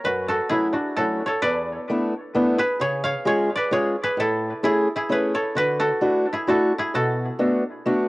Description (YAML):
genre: musette waltz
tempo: 131 BPM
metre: 3/4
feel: straight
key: F# minor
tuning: A4 = 440 Hz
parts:
  - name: koto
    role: melody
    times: 0.0-8.1 s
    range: D4 to E#5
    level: -23 LUFS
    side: equal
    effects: plate reverb, analog delay
  - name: fingerpicked acoustic archtop guitar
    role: accompaniment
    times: 0.0-8.1 s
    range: E2 to G#4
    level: -22 LUFS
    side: equal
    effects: plate reverb
room: moderate booth ambience, RT60 0.2 s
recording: home recording on cassette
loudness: -20 LUFS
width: side -21 dB against mid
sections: 0.0-8.1 A section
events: none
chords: 0.0 F#m7; 1.4 E7sus4; 2.8 C#; 4.2 Amaj7; 5.6 Dadd9; 6.9 Bm7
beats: | 0.04 0.51 0.97 | 1.43 1.89 2.34 | 2.80 3.26 3.71 | 4.17 4.63 5.09 | 5.56 6.02 6.48 | 6.94 7.39 7.85